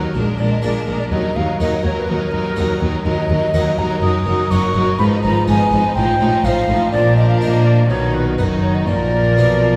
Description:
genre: classical, baroque-style concerto movement with solo episodes.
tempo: 124 BPM.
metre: 4/4.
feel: straight.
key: Eb minor from 3.1 s.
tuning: A4 = 440 Hz.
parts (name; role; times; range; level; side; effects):
mellow silver concert flute; melody; 0.0-9.8 s; A#4 to Eb6; -23 LUFS; equal; none.
rich chamber violin section; melody; 0.0-9.8 s; F#4 to C5; -33 LUFS; equal; none.
rich chamber violin section; second line; 0.0-9.8 s; Bb3 to D#4; -29 LUFS; equal; none.
harpsichord; accompaniment; 0.0-9.8 s; D#2 to G#4; -27 LUFS; equal; none.
rich chamber viola section; accompaniment; 0.0-9.8 s; D#3 to G#3; -25 LUFS; equal; none.
dark chamber double bass section; bass; 0.1-9.8 s; Gb1 to Bb2; -22 LUFS; equal; none.
rich chamber cello section; bass; 0.2-9.8 s; D#2 to Bb3; -24 LUFS; equal; none.
room: wet scoring stage reverb, RT60 2.0 s.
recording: heard from further back in the room.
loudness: -17 LUFS.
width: mono.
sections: 0.0-9.8 A section.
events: none.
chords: 0.2 A#7; 1.1 D#m; 4.0 Ebm/Gb; 5.0 Fm7b5/Ab; 6.0 F7/A; 6.9 Bb; 7.9 B; 8.9 Bb.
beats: 0.15 0.64 | 1.12 1.60 2.09 2.57 | 3.06 3.54 4.02 4.51 | 4.99 5.47 5.96 6.44 | 6.93 7.41 7.90 8.39 | 8.88 9.38.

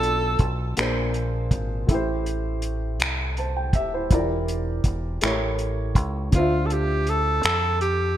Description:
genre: slow six-eight R&B.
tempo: 54 BPM (dotted quarters).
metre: 6/8.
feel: straight.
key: unclear.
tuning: A4 = 440 Hz.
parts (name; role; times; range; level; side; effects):
breathy tenor saxophone; melody; 0.0-0.5, 6.3-8.2 s; F4 to A4; -24 LUFS; equal; digital delay.
warm baby grand piano; accompaniment; 0.0-8.2 s; A2 to A5; -28 LUFS; equal; none.
deep dub fingered electric bass; bass; 0.0-8.1 s; Eb1 to F2; -27 LUFS; equal; none.
cloth-damped thuddy drum kit; drums; 0.0-8.0 s; finger snaps, hi-hat, kick drum; -23 LUFS; equal; gated reverb.
room: moderate plate reverb, RT60 1.7 s, small room ambience.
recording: bright 1980s-style digital production.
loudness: -21 LUFS.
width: side -12 dB against mid.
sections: 0.0-8.2 A section.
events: none.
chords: 0.0 Bm7b5; 0.8 Bb9; 1.9 Am7; 4.1 Em7b5; 5.2 A7b9; 6.3 Dm7.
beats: 0.77 | 1.88 2.99 | 4.11 5.22 | 6.33 7.44.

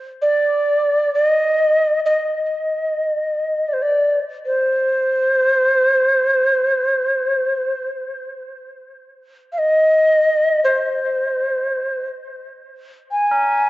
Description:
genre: world meditative, free-time meditation music.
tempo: free time.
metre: none.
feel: none.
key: C minor.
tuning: A4 = 440 Hz.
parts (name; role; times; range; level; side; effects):
mellow Native American-style cedar flute; melody; 0.2-13.7 s; C5 to Ab5; -16 LUFS; equal; ping-pong delay.
tubular bells; texture; 13.3-13.7 s; Bb4; -22 LUFS; equal; none.
room: wet spring reverb, RT60 2.2 s.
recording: worn, warbling old tape, cassette tape, warbly pitch drift, nothing above 7.7 kHz.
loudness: -15 LUFS.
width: side -17 dB against mid.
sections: 0.0-12.3 A section; 12.3-13.7 A section.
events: none.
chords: none.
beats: free time.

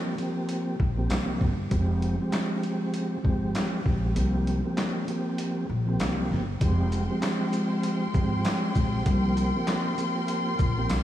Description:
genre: hip hop, boom-bap hip-hop.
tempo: 98 BPM.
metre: 4/4.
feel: swing 59% on 16ths.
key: F minor.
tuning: A4 = 436 Hz.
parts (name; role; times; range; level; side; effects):
mellow tonewheel organ; accompaniment; 0.0-11.0 s; F3 to G4; -28 LUFS; right 1 dB; chorus vibrato, cassette tape.
boom bap sampler-style drum kit; drums; 0.2-11.0 s; handclaps, hi-hat, kick drum, shaker, snare drum; -30 LUFS; equal; none.
upright bass; bass; 0.8-11.0 s; F1 to C2; -28 LUFS; equal; none.
tambourine; percussion; 1.1-11.0 s; none; -53 LUFS; left 7 dB; none.
warm studio string section; sustained chords; 6.6-11.0 s; Ab3 to C6; -32 LUFS; left 2 dB; none.
room: moderate huge ambient reverb, RT60 6.8 s.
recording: dreamy mix soaked in reverb, vinyl crackle, studio reverb.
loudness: -24 LUFS.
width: side -12 dB against mid.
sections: 0.0-6.6 A section; 6.6-11.0 B section.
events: kick muted 4.2-6.6.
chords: 0.0 C7sus4; 1.7 Fmadd9; 4.2 C7sus4; 6.6 Fmadd9; 9.1 C7sus4.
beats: 0.49 1.10 | 1.72 2.33 2.94 3.55 | 4.16 4.78 5.39 6.00 | 6.61 7.22 7.84 8.45 | 9.06 9.67 10.29 10.90.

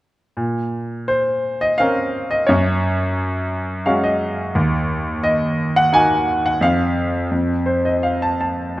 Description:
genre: classical, lyrical solo piano.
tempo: 87 BPM.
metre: 3/4.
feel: rubato.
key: Bb minor.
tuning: A4 = 441 Hz.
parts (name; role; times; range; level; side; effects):
clear grand piano; solo; 0.4-8.8 s; Eb2 to A5; -17 LUFS; equal; none.
room: moderate concert hall reverb, RT60 1.9 s.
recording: none.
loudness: -17 LUFS.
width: side -16 dB against mid.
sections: 0.4-8.8 A section.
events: grand piano fill 3.5-4.6, 7.3-8.8.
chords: 0.4 Bbmadd9; 2.5 Gbsus2; 4.6 Ebm; 6.6 N.C..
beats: | 0.38 1.10 1.80 | 2.50 3.19 3.87 | 4.56 5.24 5.93 | 6.62 7.32 8.04 | 8.77.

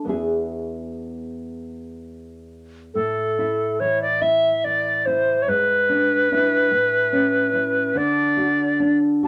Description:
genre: romantic duo for recorder and classical guitar.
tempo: 41-50 BPM (dotted quarters).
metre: 6/8.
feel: rubato.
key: A major.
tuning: A4 = 438 Hz.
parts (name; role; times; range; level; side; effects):
nylon-string guitar; accompaniment; 0.0-9.3 s; E2 to G#4; -27 LUFS; equal; none.
bright alto recorder; melody; 2.9-9.3 s; A4 to A5; -21 LUFS; equal; none.
room: wet studio reverb, RT60 0.5 s.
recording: none.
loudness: -20 LUFS.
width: mono.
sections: 0.0-3.0 A section; 3.0-9.3 B section.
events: none.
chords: 0.1 E; 3.0 A5; 5.5 E7/G#; 6.7 A; 8.0 D.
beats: | 0.10 1.53 | 2.96 4.23 | 5.49 6.72 | 7.96 9.24.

